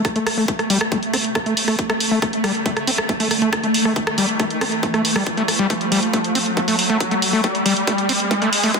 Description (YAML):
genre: psychedelic trance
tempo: 138 BPM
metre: 4/4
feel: straight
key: unclear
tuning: A4 = 443 Hz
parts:
  - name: pulsing gated texture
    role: sustained chords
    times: 0.0-8.8 s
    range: A3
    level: -24 LUFS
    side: right 2 dB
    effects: chorus, built-in reverb, sidechain pumping
  - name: drum and bass drum kit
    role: drums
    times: 0.0-8.8 s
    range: hi-hat, rim click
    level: -21 LUFS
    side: right 1 dB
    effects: soft clipping on snare, small room ambience
  - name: electronic kick drum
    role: drums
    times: 0.0-8.8 s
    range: none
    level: -24 LUFS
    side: left 1 dB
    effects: high-pass filter on kick, small room ambience
  - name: riser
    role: sound effects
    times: 0.9-8.8 s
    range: none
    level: -25 LUFS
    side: left 1 dB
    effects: none
  - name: overdriven acid bass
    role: riff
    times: 0.2-8.7 s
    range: G3 to C4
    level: -22 LUFS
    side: moving between left 4 dB and right 3 dB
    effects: distortion, auto-pan, sidechain pumping, dub echo
room: moderate lush hall reverb, RT60 2.3 s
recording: dense, heavily limited modern master, high-pass filter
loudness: -17 LUFS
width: side -4 dB against mid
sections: 0.0-8.8 A section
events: build-up 0.0-8.8; filter sweep on acid bass 0.0-8.8; riser 0.9-8.8; drum fill 5.7-8.8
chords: none